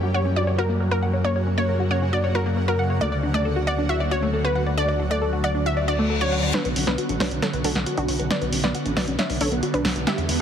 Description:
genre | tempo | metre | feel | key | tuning
uplifting trance | 136 BPM | 4/4 | straight | B minor | A4 = 439 Hz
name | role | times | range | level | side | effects
wide unison pluck | melody | 0.0-10.3 s | D4 to E5 | -26 LUFS | equal | ping-pong delay
analog pluck | arpeggios | 0.0-10.3 s | A3 to F#5 | -28 LUFS | left 2 dB | chorus, phaser, ping-pong delay
gritty driven synth bass | bass | 0.0-10.4 s | A1 to F#2 | -25 LUFS | equal | none
reverse cymbal and riser | sound effects | 5.8-10.4 s | none | -33 LUFS | left 4 dB | none
punchy analog drum machine | drums | 6.5-10.4 s | hi-hat, snare drum | -26 LUFS | equal | none
room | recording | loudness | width
light reverb | heavily compressed radio sound, multiband compression | -20 LUFS | side -8 dB against mid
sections
0.0-6.5 A section; 6.5-10.4 B section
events
reverse cymbal 5.8-6.5; build-up 6.5-10.4; drum fill 6.5-10.4; filter sweep on synth arpeggio sound 6.5-10.4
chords
0.0 F#; 3.0 D; 6.5 Bmadd9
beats
0.36 0.81 | 1.25 1.69 2.13 2.57 | 3.01 3.45 3.89 4.33 | 4.78 5.22 5.66 6.10 | 6.54 6.98 7.42 7.86 | 8.30 8.75 9.19 9.63 | 10.07

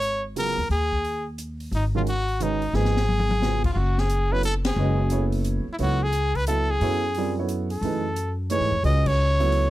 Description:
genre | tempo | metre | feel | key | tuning
modal jazz | 177 BPM | 3/4 | swing 65% on 8ths | G# dorian, F# dorian from 3.8 s | A4 = 439 Hz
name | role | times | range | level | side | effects
bright trumpet | melody | 0.0-9.7 s | D#4 to D#5 | -26 LUFS | equal | none
upright bass | bass | 0.0-9.7 s | F#1 to G#2 | -24 LUFS | equal | none
open jazz drum kit | drums | 0.0-9.6 s | crash cymbal, hi-hat, kick drum, ride cymbal, snare drum, toms | -32 LUFS | left 2 dB | none
warm concert grand piano | accompaniment | 0.4-9.7 s | C#3 to E5 | -28 LUFS | right 4 dB | none
room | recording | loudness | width
little or no reverb | close, detailed microphones | -21 LUFS | side -15 dB against mid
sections
0.0-3.8 A section; 3.8-9.7 B section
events
drum fill 2.7-3.4; band accent 4.6, 9.0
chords
0.0 G#m11; 3.8 F#m9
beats
0.03 0.37 | 0.71 1.04 1.38 | 1.72 2.06 2.40 | 2.74 3.08 3.42 | 3.76 4.10 4.43 | 4.77 5.11 5.45 | 5.79 6.13 6.47 | 6.80 7.14 7.48 | 7.82 8.16 8.50 | 8.84 9.18 9.52

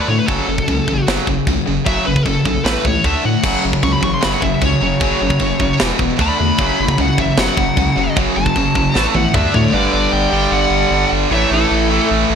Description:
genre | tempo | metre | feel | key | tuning
heavy metal | 152 BPM | 4/4 | straight | F# phrygian | A4 = 440 Hz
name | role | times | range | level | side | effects
high-gain lead guitar | melody | 0.0-12.1 s | A4 to C#6 | -20 LUFS | left 2 dB | distortion
heavy high-gain guitar | riff | 0.0-12.4 s | E2 to D4 | -20 LUFS | right 11 dB | distortion
tight distorted guitar | riff | 0.0-12.4 s | E2 to D4 | -20 LUFS | left 9 dB | distortion
saturated sub bass | bass | 0.1-12.4 s | E1 to A2 | -21 LUFS | equal | none
tight metal drum kit | drums | 0.3-9.6 s | china cymbal, crash cymbal, kick drum, snare drum, toms | -21 LUFS | equal | none
distorted electric guitar | riff | 3.4-12.4 s | E2 to D4 | -22 LUFS | right 1 dB | overdrive
high-gain lead guitar | second line | 9.5-12.1 s | E4 to D5 | -22 LUFS | right 6 dB | distortion
room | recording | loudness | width
moderate lush hall reverb, RT60 1.7 s, small room ambience | bright 1980s-style digital production | -13 LUFS | side -7 dB against mid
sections
0.0-9.7 A section; 9.7-12.4 B section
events
lead electric guitar solo 0.0-9.7; drum fill 9.0-9.7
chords
0.3 F#m; 2.6 A5; 3.0 D5; 3.4 F#5; 5.8 E5; 6.2 D5; 6.6 F#m; 9.0 A5; 9.3 D5; 9.7 G5; 11.3 A5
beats
| 0.28 0.68 1.07 1.47 | 1.86 2.25 2.65 3.04 | 3.43 3.83 4.22 4.62 | 5.01 5.40 5.80 6.19 | 6.59 6.98 7.37 7.77 | 8.16 8.56 8.95 9.35 | 9.74 10.14 10.53 10.93 | 11.32 11.71 12.11

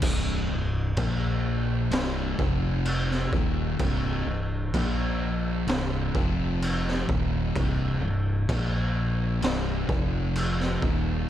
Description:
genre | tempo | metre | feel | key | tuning
stoner and doom metal | 64 BPM | 4/4 | straight | C minor | A4 = 440 Hz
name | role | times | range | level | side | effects
thick fuzz guitar | riff | 0.0-11.3 s | C2 to Bb3 | -30 LUFS | left 7 dB | distortion
thick fuzz guitar | riff | 0.0-11.3 s | C2 to Bb3 | -31 LUFS | right 8 dB | distortion
growling fingered electric bass | bass | 0.0-11.3 s | C1 to Bb1 | -30 LUFS | equal | overdrive, tube saturation
raw garage drum kit | drums | 0.0-11.0 s | crash cymbal, kick drum, snare drum | -29 LUFS | equal | none
room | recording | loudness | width
little or no reverb | dark, warm production | -24 LUFS | side -11 dB against mid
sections
0.0-11.3 A section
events
none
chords
0.0 C5; 1.0 Bb5; 1.9 C5; 2.4 F5; 3.3 Cm; 4.7 Bb5; 5.7 C5; 6.1 F5; 7.1 Cm; 8.5 Bb5; 9.4 C5; 9.9 F5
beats
| 0.03 0.97 1.92 2.86 | 3.80 4.74 5.67 6.61 | 7.55 8.49 9.42 10.36

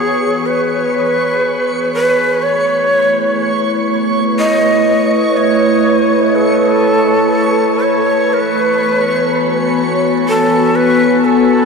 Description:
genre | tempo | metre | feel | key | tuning
ambient | 61 BPM | 3/4 | straight | A major | A4 = 440 Hz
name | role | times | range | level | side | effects
breathy bright shakuhachi | melody | 0.0-11.7 s | G#4 to D#5 | -14 LUFS | right 1 dB | tape echo
warbly tape-like pad | sustained chords | 0.0-11.7 s | E3 to G#5 | -14 LUFS | left 1 dB | chorus, built-in reverb
backwards swelling texture | texture | 0.0-11.7 s | C#5 to C#6 | -20 LUFS | left 1 dB | built-in reverb
room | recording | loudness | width
wet shimmer reverb, RT60 8.9 s | cassette tape | -11 LUFS | side -4 dB against mid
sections
0.0-11.7 A section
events
none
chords
0.0 E; 2.4 Aadd9; 8.3 E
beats
0.44 1.43 | 2.41 3.39 4.38 | 5.36 6.34 7.33 | 8.31 9.29 10.28 | 11.26

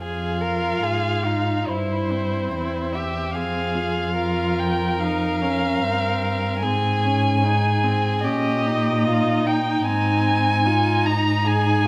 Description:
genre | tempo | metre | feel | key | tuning
classical, slow romantic movement for string quartet | 73 BPM | 4/4 | rubato | F minor | A4 = 440 Hz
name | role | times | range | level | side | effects
muted violin | melody | 0.0-11.9 s | C5 to Bb5 | -27 LUFS | equal | none
muted violin | second line | 0.0-11.9 s | Eb4 to Bb4 | -30 LUFS | equal | none
muted viola | accompaniment | 0.0-11.9 s | C4 to F4 | -29 LUFS | equal | none
muted cello | bass | 0.0-11.9 s | E2 to Bb2 | -26 LUFS | equal | none
room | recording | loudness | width
moderate recital hall reverb, RT60 1.4 s | none | -22 LUFS | mono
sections
0.0-11.9 A section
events
none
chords
0.0 Fm; 1.7 C/G; 3.3 Fm; 6.6 Ab; 8.2 Eb7/Bb; 9.9 Ab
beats
0.81 1.67 2.52 | 3.34 4.17 5.00 5.82 | 6.62 7.42 8.24 9.07 | 9.87 10.66 11.47

